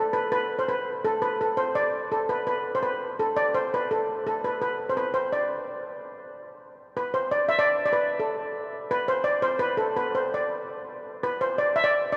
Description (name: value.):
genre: medieval.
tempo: 168 BPM.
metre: 3/4.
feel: straight.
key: unclear.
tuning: A4 = 440 Hz.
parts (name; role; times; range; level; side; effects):
steel pan; solo; 0.0-12.2 s; A4 to E5; -27 LUFS; equal; none.
room: wet cathedral reverb, RT60 4.8 s.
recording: heard from further back in the room.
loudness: -26 LUFS.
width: mono.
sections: 0.0-6.4 A section; 6.4-12.2 B section.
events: none.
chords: none.